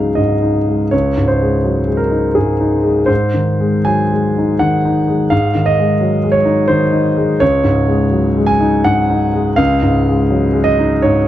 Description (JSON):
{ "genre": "neoclassical minimalist piano", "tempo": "83 BPM", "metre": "3/4", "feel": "uneven beats, rubato", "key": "Db major", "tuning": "A4 = 438 Hz", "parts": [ { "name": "clear concert grand piano", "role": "solo", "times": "0.0-11.3 s", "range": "Db2 to Ab5", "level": "-12 LUFS", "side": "equal", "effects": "none" } ], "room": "studio reverb", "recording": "dry, close 1970s-style studio recording", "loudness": "-12 LUFS", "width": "side -12 dB against mid", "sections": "0.0-11.3 A section", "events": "none", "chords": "0.0 Dbsus2; 3.1 Ab; 7.4 Dbsus2" }